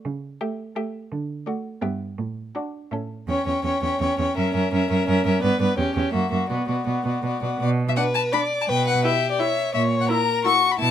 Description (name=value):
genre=quick classical-period movement for string quartet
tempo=168 BPM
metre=3/4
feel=rubato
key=D major, B minor from 3.3 s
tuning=A4 = 441 Hz
part: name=rich cello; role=bass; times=0.1-10.9 s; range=E2 to D3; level=-25 LUFS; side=right 3 dB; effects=none
part: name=rich violin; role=melody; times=0.4-10.9 s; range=C#5 to C#6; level=-26 LUFS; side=left 7 dB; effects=none
part: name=rich violin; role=second line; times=0.4-10.9 s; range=E4 to E5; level=-26 LUFS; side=left 3 dB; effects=none
part: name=rich viola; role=accompaniment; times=0.4-10.5 s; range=A3 to E4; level=-27 LUFS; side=right 3 dB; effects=none
room=light reverb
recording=close, detailed microphones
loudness=-21 LUFS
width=side -10 dB against mid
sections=0.0-7.6 A section; 7.6-10.9 B section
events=none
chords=0.1 A7/C#; 1.1 D; 1.8 Em/G; 2.2 D/A; 2.9 A; 3.3 C#dim/E; 4.4 F#7; 5.4 G; 5.8 C#dim; 6.1 F#7; 6.5 Bm; 8.7 C#m7b5/B; 9.7 F#7/A#